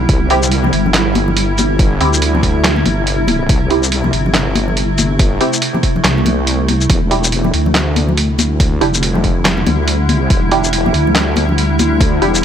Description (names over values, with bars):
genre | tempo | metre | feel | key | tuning
deep dubstep | 141 BPM | 4/4 | swing 59% on 16ths, half-time | unclear | A4 = 440 Hz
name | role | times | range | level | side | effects
granular cloud pad | sustained chords | 0.0-12.4 s | C3 to E4 | -18 LUFS | equal | built-in reverb
wobble bass | bass | 0.0-12.4 s | E1 to D2 | -16 LUFS | equal | chorus
electronic kick drum | drums | 0.1-12.1 s | none | -14 LUFS | equal | overdrive
trip hop sampler-style drum kit | drums | 0.1-12.4 s | handclaps, hi-hat, shaker, snare drum | -18 LUFS | right 1 dB | none
filtered dub chord stab | stabs | 0.3-12.3 s | C4 to G4 | -21 LUFS | right 3 dB | phaser, lush chorus, dub echo
congas | percussion | 0.6-11.9 s | none | -21 LUFS | left 3 dB | dub echo
room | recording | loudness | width
digital ambience | none | -11 LUFS | side -9 dB against mid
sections
0.0-12.4 A section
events
none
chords
0.1 C; 6.9 Em7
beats
| 0.09 0.52 0.94 1.37 | 1.79 2.22 2.64 3.07 | 3.50 3.92 4.35 4.77 | 5.20 5.62 6.05 6.47 | 6.90 7.33 7.75 8.18 | 8.60 9.03 9.45 9.88 | 10.30 10.73 11.15 11.58 | 12.01 12.43